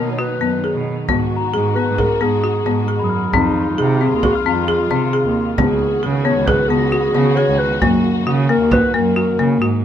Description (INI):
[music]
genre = contemporary instrumental, chamber music in an uneven meter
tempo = 134 BPM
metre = 5/4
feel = straight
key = unclear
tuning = A4 = 440 Hz
[part]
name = dark clarinet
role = melody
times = 0.0-9.8 s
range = Eb4 to C#5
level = -21 LUFS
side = equal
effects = none
[part]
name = dark studio string section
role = sustained chords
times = 0.0-9.8 s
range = D#3 to F#4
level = -26 LUFS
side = left 2 dB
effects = none
[part]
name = folk marimba with hard mallets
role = arpeggios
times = 0.0-9.8 s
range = A#3 to G#4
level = -19 LUFS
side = left 4 dB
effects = none
[part]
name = muted cello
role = bass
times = 0.0-9.8 s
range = C#2 to C#3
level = -20 LUFS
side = right 4 dB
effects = none
[part]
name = frame drum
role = percussion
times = 1.1-9.7 s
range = none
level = -22 LUFS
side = right 3 dB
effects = none
[part]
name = glockenspiel with rubber mallets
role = texture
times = 1.4-7.9 s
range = A#5 to A#6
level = -28 LUFS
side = left 7 dB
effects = none
[sound]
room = moderate studio reverb, RT60 0.5 s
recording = none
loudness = -14 LUFS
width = side -9 dB against mid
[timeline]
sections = 0.0-9.8 A section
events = none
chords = 0.0 B; 3.3 Fm7; 5.6 C#9sus4; 7.8 F#6